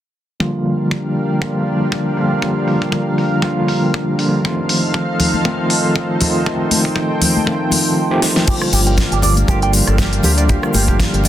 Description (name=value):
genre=nu-disco, nu disco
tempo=119 BPM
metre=4/4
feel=swing 55% on 16ths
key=G minor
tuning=A4 = 439 Hz
part: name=overdriven tine electric piano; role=accompaniment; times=0.4-11.3 s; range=D3 to G4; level=-17 LUFS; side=equal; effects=medium tremolo, sidechain pumping, low-pass filter, tape echo
part: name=lush unison pad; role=sustained chords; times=0.4-11.3 s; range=Bb3 to G5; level=-22 LUFS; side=equal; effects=chorus, sidechain pumping
part: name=kick drum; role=drums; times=0.4-11.1 s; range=none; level=-19 LUFS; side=equal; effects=high-pass filter on kick, small room ambience, high-pass filter on snare, high-pass filter on room
part: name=pop drum kit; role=drums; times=0.7-11.3 s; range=crash cymbal, hi-hat, rim click, snare drum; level=-19 LUFS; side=left 1 dB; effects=low-pass filter on hats, small room ambience, low-pass filter on snare, low-pass filter on cymbals
part: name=congas and egg shaker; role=percussion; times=5.2-11.3 s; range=none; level=-23 LUFS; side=left 2 dB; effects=none
part: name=electric guitar with an envelope filter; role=riff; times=8.5-11.3 s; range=G4 to G5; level=-23 LUFS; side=right 4 dB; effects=wide subtle chorus, tape echo
part: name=fingered electric bass with an envelope filter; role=bass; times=8.7-11.3 s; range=G1 to D2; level=-16 LUFS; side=equal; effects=none
room=moderate echo chamber reverb, RT60 2.4 s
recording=dense, heavily limited modern master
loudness=-14 LUFS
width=side -12 dB against mid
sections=0.4-8.5 A section; 8.5-11.3 B section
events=filter sweep on drum 0.4-8.5; filter sweep on tine electric piano 0.4-8.5, 8.5-11.3; kick drops out 8.0-8.5; drum fill 8.2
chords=0.4 Gm7; 4.4 F7; 8.5 Gm7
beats=| 0.41 0.91 1.42 1.92 | 2.42 2.93 3.43 3.94 | 4.44 4.95 5.45 5.96 | 6.46 6.96 7.47 7.97 | 8.48 8.98 9.48 9.99 | 10.49 11.00